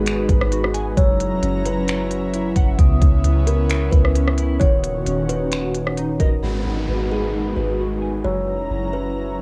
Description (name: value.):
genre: hip hop, atmospheric cloud-rap.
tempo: 132 BPM.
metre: 4/4.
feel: half-time.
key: unclear.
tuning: A4 = 440 Hz.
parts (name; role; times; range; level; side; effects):
kalimba; melody; 0.0-9.4 s; G#4 to C#5; -28 LUFS; equal; analog delay.
airy breathy pad; sustained chords; 0.0-9.4 s; A#2 to A#5; -27 LUFS; equal; chorus, sidechain pumping, cassette tape.
mellow electric guitar; arpeggios; 0.0-9.4 s; C#3 to G#5; -31 LUFS; equal; ensemble chorus, cassette tape, analog delay.
soft 808-style bass; bass; 0.0-9.4 s; D#1 to C#2; -25 LUFS; equal; none.
vibraphone with hard mallets; texture; 0.0-9.4 s; B3 to E6; -37 LUFS; equal; cassette tape.
smooth R&B drum kit; drums; 0.1-6.3 s; finger snaps, hi-hat, kick drum, rim click; -20 LUFS; equal; cassette tape.
downlifter; sound effects; 6.4-9.4 s; none; -36 LUFS; equal; none.
room: little or no reverb.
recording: home recording on cassette.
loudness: -20 LUFS.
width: mono.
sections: 0.0-6.4 A section; 6.4-9.4 B section.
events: none.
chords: 0.0 G#m7; 1.0 F#7; 2.8 C#m9; 4.6 D#m7; 6.4 G#m7; 8.2 F#7.